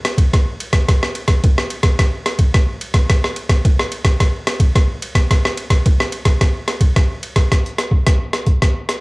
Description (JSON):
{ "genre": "samba", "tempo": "108 BPM", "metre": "4/4", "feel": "straight", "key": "none", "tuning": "none", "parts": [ { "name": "boom bap sampler-style drum kit", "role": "drums", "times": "0.0-9.0 s", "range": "hi-hat, kick drum, ride cymbal, rim click", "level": "-14 LUFS", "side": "equal", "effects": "overdrive" } ], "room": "light reverb", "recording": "home recording on cassette", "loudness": "-14 LUFS", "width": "side -25 dB against mid", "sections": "0.0-7.5 A section; 7.5-9.0 B section", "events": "none", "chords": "none" }